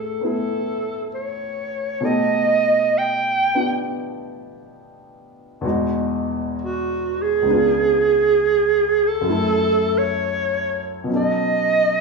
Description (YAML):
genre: jazz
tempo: 66 BPM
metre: 4/4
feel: swing 68% on 8ths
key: unclear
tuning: A4 = 439 Hz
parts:
  - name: breathy clarinet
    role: melody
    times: 0.0-12.0 s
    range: F#4 to G5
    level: -18 LUFS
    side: right 3 dB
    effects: none
  - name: warm baby grand piano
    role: accompaniment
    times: 0.0-12.0 s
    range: C#2 to B4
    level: -24 LUFS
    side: left 1 dB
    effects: none
room: wet recital hall reverb, RT60 1.4 s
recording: recorded in a church or concert hall, small room ambience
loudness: -18 LUFS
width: side -3 dB against mid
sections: 0.0-12.0 A section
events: none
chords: 0.0 Aadd9; 2.0 B7alt; 5.6 Emaj9; 7.5 C#7b9; 9.3 F#m7; 11.1 B7